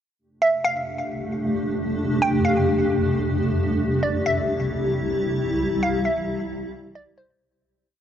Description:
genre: hip hop, atmospheric cloud-rap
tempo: 133 BPM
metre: 4/4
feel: half-time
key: F major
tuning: A4 = 440 Hz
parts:
  - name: granular cloud pad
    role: sustained chords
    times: 1.0-7.4 s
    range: C2 to G4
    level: -22 LUFS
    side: equal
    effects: built-in reverb
  - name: glassy wavetable pluck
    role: melody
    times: 0.4-7.4 s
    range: C5 to G5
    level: -24 LUFS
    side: right 1 dB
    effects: chorus, low-pass filter, digital delay
room: moderate huge ambient reverb, RT60 3.9 s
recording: none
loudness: -20 LUFS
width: side -9 dB against mid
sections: 0.2-7.4 breakdown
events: fade-out 5.6-7.4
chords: 0.2 F6; 3.8 C

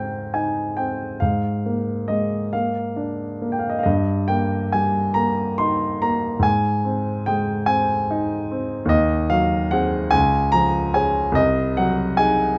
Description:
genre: classical, romantic nocturne for solo piano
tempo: 44-50 BPM (dotted quarters)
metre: 6/8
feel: rubato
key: Ab major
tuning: A4 = 441 Hz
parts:
  - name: warm grand piano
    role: solo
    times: 0.0-12.6 s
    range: C2 to C6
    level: -21 LUFS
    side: equal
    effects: none
room: light reverb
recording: close, detailed microphones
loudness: -21 LUFS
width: mono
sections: 0.0-12.6 A section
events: none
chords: 0.0 Ab; 1.2 Bb7/Ab; 3.9 Eb/G; 6.4 Ab; 8.9 Ab7/Eb; 10.1 Db; 11.4 Ab7/C

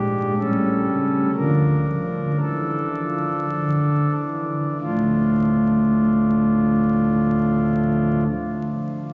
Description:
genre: classical, chorale-style piece for pipe organ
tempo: 46-66 BPM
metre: 3/4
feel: rubato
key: D minor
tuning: A4 = 440 Hz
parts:
  - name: pipe organ, principal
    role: solo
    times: 0.0-8.2 s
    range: D1 to Bb4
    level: -21 LUFS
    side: equal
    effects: none
room: wet cathedral reverb, RT60 5.0 s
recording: recorded on a phone in the room, club reverb, vinyl crackle, nothing above 7.7 kHz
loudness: -21 LUFS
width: mono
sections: 0.0-4.8 A section; 4.8-8.7 B section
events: slowing down 0.0-4.8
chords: 0.4 A7; 1.3 Dm

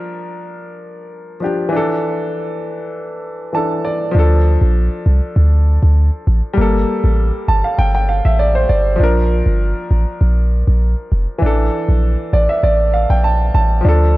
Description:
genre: dancehall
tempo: 99 BPM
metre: 4/4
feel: straight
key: D minor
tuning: A4 = 442 Hz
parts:
  - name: clear grand piano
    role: accompaniment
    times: 0.0-14.2 s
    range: E3 to A5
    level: -18 LUFS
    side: equal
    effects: none
  - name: warm 808-style bass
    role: bass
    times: 4.1-14.2 s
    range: F1 to D2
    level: -13 LUFS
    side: equal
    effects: none
room: light reverb, small room ambience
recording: dark, warm production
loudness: -13 LUFS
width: side -18 dB against mid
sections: 0.0-4.2 A section; 4.2-14.2 B section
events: grand piano fill 3.2-4.2, 7.2-9.0, 12.0-13.8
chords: 0.0 Bb; 1.7 Asus4; 4.2 Dm; 6.6 Gmadd9; 9.0 Bb; 11.4 Asus4

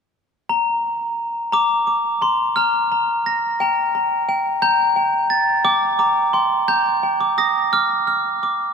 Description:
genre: children's music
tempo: 58 BPM (dotted quarters)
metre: 6/8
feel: rubato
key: Bb major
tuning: A4 = 439 Hz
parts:
  - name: glockenspiel with soft plastic mallets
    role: melody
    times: 0.5-8.7 s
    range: G5 to Bb6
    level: -16 LUFS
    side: equal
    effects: none
room: wet cathedral reverb, RT60 3.8 s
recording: recorded in a church or concert hall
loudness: -16 LUFS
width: side -6 dB against mid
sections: 0.0-1.5 A section; 1.5-8.7 B section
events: none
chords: 0.0 N.C.; 1.5 Bb; 3.6 Gm; 7.7 Dm

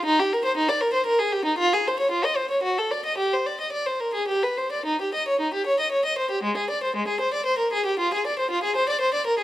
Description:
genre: classical, baroque-style suite movement for unaccompanied violin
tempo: 101-121 BPM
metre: 3/4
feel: rubato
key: unclear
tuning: A4 = 440 Hz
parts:
  - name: warm violin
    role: solo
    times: 0.0-9.4 s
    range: Ab3 to Eb5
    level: -21 LUFS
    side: equal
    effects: none
room: moderate recital hall reverb, RT60 1.8 s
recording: close, detailed microphones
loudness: -22 LUFS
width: side -14 dB against mid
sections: 0.0-4.9 A section; 4.9-9.4 B section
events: none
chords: none

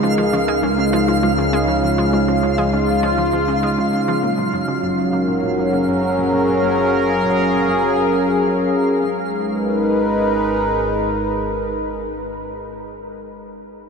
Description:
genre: ambient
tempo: 100 BPM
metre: 4/4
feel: straight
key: G# dorian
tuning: A4 = 438 Hz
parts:
  - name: sweeping resonant pad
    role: sustained chords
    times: 0.0-12.2 s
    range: C#3 to B4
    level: -17 LUFS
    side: equal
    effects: chorus
  - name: warbly dusty pluck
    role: arpeggios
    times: 0.0-9.3 s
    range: E#3 to A#4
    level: -30 LUFS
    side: left 2 dB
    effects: none
  - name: analog pluck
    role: riff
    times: 0.0-9.3 s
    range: F#2 to A#3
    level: -27 LUFS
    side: equal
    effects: chorus, tape echo
  - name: analog drone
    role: bass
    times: 0.1-10.8 s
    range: F#1 to C#2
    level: -31 LUFS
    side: left 1 dB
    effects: chorus
  - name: twinkling granular texture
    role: texture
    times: 0.0-9.0 s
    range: E#5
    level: -26 LUFS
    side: right 2 dB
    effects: built-in reverb
room: wet huge ambient reverb, RT60 8.2 s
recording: none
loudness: -16 LUFS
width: side -5 dB against mid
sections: 0.0-9.0 A section; 9.0-11.4 B section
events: fade-out on synth arpeggio sound 0.0-9.0; fade-out on synth drone 0.0-9.0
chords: 0.0 C#; 4.2 F#; 9.0 G#m

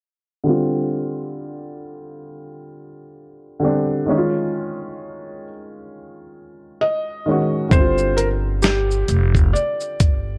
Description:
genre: lo-fi hip hop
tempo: 66 BPM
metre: 4/4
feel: swing 58% on 16ths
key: unclear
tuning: A4 = 441 Hz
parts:
  - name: dark upright piano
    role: accompaniment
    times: 0.4-10.4 s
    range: D3 to Gb4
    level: -24 LUFS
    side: equal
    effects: cassette tape, low-pass filter
  - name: felt-muted upright piano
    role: melody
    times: 6.8-10.4 s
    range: G4 to Eb5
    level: -25 LUFS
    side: equal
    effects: low-pass filter
  - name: upright bass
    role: bass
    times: 7.7-10.4 s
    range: F1 to G1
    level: -23 LUFS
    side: equal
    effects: none
  - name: dusty soul sampler-style drum kit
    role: drums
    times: 7.7-10.2 s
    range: hi-hat, kick drum, shaker, snare drum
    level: -20 LUFS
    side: equal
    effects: none
room: light reverb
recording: dark, warm production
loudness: -20 LUFS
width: mono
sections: 0.4-7.7 A section; 7.7-10.4 B section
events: filter sweep on upright piano 0.4-7.7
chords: 0.4 G5; 4.1 Eb7(no3); 7.7 G5

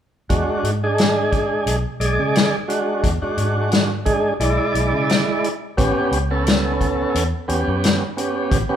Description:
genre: straight-eighth soul blues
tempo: 88 BPM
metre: 4/4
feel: swing 56% on 16ths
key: unclear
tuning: A4 = 440 Hz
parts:
  - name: tonewheel organ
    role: accompaniment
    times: 0.3-8.8 s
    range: G#3 to D5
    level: -20 LUFS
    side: right 1 dB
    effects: slow rotary speaker, overdrive
  - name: vintage muted fingered electric bass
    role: bass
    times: 0.3-8.7 s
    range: A1 to C#3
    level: -24 LUFS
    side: equal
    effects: none
  - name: warm soul drum kit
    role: drums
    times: 0.3-8.7 s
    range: hi-hat, kick drum, snare drum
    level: -21 LUFS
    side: left 1 dB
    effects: none
room: moderate large studio reverb, RT60 1.2 s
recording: band playing live in one room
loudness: -17 LUFS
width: side -9 dB against mid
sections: 0.3-8.8 A section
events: none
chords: 0.3 E7; 5.8 A7

